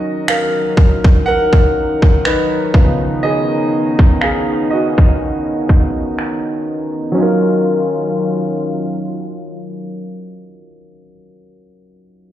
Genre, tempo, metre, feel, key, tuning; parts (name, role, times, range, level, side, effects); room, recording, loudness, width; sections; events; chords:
contemporary R&B; 61 BPM; 4/4; swing 54% on 16ths; Eb minor; A4 = 439 Hz
warm grand piano; accompaniment; 0.0-12.3 s; Db3 to Gb5; -18 LUFS; right 1 dB
warm analog pad; sustained chords; 0.0-11.1 s; Eb3 to F4; -19 LUFS; left 1 dB; chorus
trap drum kit; drums; 0.3-6.4 s; finger snaps, kick drum; -12 LUFS; equal; overdrive
light reverb, digital ambience; played on a big sound system in a bare room, stone room reverb, low-pass filter; -12 LUFS; side -12 dB against mid
0.0-7.2 A section; 7.2-11.1 B section
grand piano solo 0.0-7.2; filter sweep 0.0-7.2
0.0 Ebm9; 2.7 Db9; 7.2 Ebm9